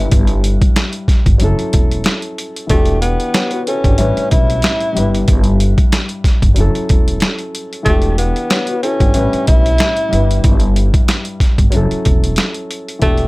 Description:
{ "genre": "hip hop, boom-bap hip-hop", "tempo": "93 BPM", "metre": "4/4", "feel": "swing 55% on 16ths", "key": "unclear", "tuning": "A4 = 436 Hz", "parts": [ { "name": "breathy tenor saxophone", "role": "melody", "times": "0.0-13.3 s", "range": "A3 to E4", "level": "-18 LUFS", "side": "equal", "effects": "high-pass filter, low-pass filter, plate reverb, digital delay" }, { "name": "dark concert grand piano", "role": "accompaniment", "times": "0.0-13.3 s", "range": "G2 to C#5", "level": "-20 LUFS", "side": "left 2 dB", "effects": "high-pass filter, low-pass filter, plate reverb" }, { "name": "upright bass", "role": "bass", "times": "0.0-13.3 s", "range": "E1 to B1", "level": "-16 LUFS", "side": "equal", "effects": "none" }, { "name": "boom bap sampler-style drum kit", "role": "drums", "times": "0.1-13.3 s", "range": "hi-hat, kick drum, snare drum", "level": "-14 LUFS", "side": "equal", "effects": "none" } ], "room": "little or no reverb", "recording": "none", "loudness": "-12 LUFS", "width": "side -22 dB against mid", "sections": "0.0-13.3 A section", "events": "none", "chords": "0.0 G6; 1.4 F#m7; 2.7 Em9; 4.0 A9; 5.0 G6; 6.6 F#m7; 7.9 Em9; 9.2 A9; 10.1 G6; 11.7 F#m7", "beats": "| 0.12 0.76 1.41 2.05 | 2.70 3.35 3.99 4.63 | 5.28 5.92 6.57 7.22 | 7.86 8.51 9.15 9.80 | 10.44 11.09 11.73 12.38 | 13.02" }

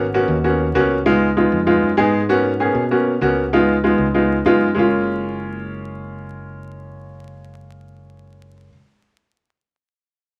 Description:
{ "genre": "Afro-Cuban jazz", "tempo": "195 BPM", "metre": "4/4", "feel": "straight", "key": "F# major", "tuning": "A4 = 440 Hz", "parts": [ { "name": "clear baby grand piano", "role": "accompaniment", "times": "0.0-8.7 s", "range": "G#3 to G#4", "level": "-18 LUFS", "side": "equal", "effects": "none" }, { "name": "fingered electric bass", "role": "bass", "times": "0.0-8.7 s", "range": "F#1 to B2", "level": "-28 LUFS", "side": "equal", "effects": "none" } ], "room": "wet small room reverb, RT60 0.6 s", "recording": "vinyl crackle", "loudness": "-17 LUFS", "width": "mono", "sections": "0.0-4.8 A section; 4.8-7.2 B section", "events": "none", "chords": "0.0 G#m11; 1.1 C#7; 2.3 G#m11; 3.5 C#7; 4.8 F#maj7", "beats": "0.14 0.44 0.75 | 1.06 1.37 1.68 1.99 | 2.29 2.60 2.91 3.22 | 3.53 3.83 4.14 4.45 | 4.76 5.07 5.38 5.68 | 5.99 6.30 6.61 6.92" }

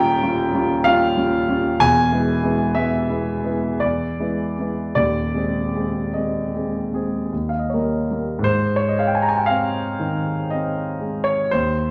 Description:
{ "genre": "classical, romantic nocturne for solo piano", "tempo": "51-64 BPM", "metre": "3/4", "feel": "rubato", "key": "Ab major", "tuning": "A4 = 440 Hz", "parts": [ { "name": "warm grand piano", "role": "solo", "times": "0.0-11.9 s", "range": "Eb1 to Bb5", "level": "-21 LUFS", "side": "equal", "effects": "none" } ], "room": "wet large studio reverb, RT60 1.1 s", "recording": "none", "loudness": "-21 LUFS", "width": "mono", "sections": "0.0-8.5 A section; 8.5-11.9 B section", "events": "none", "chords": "0.0 Eb9; 1.8 E; 5.0 Ab/Eb; 7.3 Eb; 8.5 Ab", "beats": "0.86 | 1.80 2.77 3.83 | 4.97 6.14 7.32 | 8.46 9.48 10.50 | 11.51" }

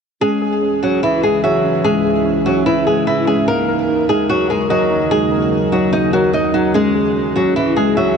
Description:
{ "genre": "hip hop", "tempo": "147 BPM", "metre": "4/4", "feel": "half-time", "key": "unclear", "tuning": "A4 = 443 Hz", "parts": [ { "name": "flamenco guitar", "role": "melody", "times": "0.2-8.2 s", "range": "Fb3 to Eb5", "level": "-16 LUFS", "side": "left 1 dB", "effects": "low-pass filter, ping-pong delay" }, { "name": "muted felt-like synth keys", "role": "accompaniment", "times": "0.2-8.2 s", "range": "Db4 to Fb5", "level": "-18 LUFS", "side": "right 2 dB", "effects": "chorus, low-pass filter" }, { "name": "deep dark ambient pad", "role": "sustained chords", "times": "0.9-8.2 s", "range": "Db2 to Gb3", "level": "-22 LUFS", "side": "left 1 dB", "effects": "chorus, built-in reverb" } ], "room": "moderate huge ambient reverb, RT60 8.3 s", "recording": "none", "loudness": "-13 LUFS", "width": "side -6 dB against mid", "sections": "0.2-8.2 A section", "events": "none", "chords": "0.2 Dbm; 3.5 Ebm7; 6.7 Dbm", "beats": "| 0.21 0.62 1.03 1.44 | 1.84 2.25 2.66 3.07 | 3.48 3.89 4.29 4.70 | 5.11 5.52 5.93 6.33 | 6.74 7.15 7.56 7.97" }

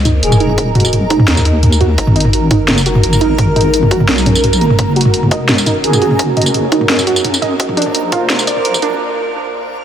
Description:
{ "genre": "half-time drum and bass", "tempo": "171 BPM", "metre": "4/4", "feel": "half-time", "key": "Eb minor", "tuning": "A4 = 440 Hz", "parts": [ { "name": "deep dark ambient pad", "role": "sustained chords", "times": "0.0-9.0 s", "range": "Ab3 to Eb5", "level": "-20 LUFS", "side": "equal", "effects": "chorus, built-in reverb, vintage 12-bit sampler grit, sidechain pumping" }, { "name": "warbly dusty pluck", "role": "arpeggios", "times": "0.0-9.0 s", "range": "Bb3 to Eb5", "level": "-18 LUFS", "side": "right 2 dB", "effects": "chorus, digital delay" }, { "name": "deep soft wobble bass", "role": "bass", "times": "0.0-9.0 s", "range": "Eb1 to Gb2", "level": "-16 LUFS", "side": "equal", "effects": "chorus" }, { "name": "backwards swelling texture", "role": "texture", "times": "0.2-9.0 s", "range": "Bb4", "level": "-21 LUFS", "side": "right 2 dB", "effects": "built-in reverb" }, { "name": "drum and bass drum kit", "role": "drums", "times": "0.1-8.9 s", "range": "hi-hat, snare drum, tambourine, toms", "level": "-14 LUFS", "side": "equal", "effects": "none" }, { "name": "breathy flute-like synth lead", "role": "melody", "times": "0.2-0.6, 5.8-6.2 s", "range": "Ab4", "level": "-23 LUFS", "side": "left 1 dB", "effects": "ensemble chorus, digital delay" }, { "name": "electronic kick drum", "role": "drums", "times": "0.6-8.2 s", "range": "none", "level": "-18 LUFS", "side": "left 1 dB", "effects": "high-pass filter on kick" } ], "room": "moderate huge ambient reverb, RT60 8.2 s", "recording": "high-pass filter, faint mains hum", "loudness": "-10 LUFS", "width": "side -9 dB against mid", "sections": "0.0-9.8 A section", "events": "build-up 0.0-9.8; filter sweep on synth pluck 0.0-9.8; filter sweep on soft synth lead 0.0-9.8; filter sweep 0.0-9.8; break 9.0-9.8", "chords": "0.0 Ebm; 2.0 Abm7; 4.8 Gb; 7.6 Bb", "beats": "0.23 | 0.58 0.93 1.28 1.63 | 1.98 2.33 2.68 3.04 | 3.39 3.74 4.09 4.44 | 4.79 5.14 5.49 5.84 | 6.19 6.54 6.89 7.25 | 7.60 7.95 8.30 8.65" }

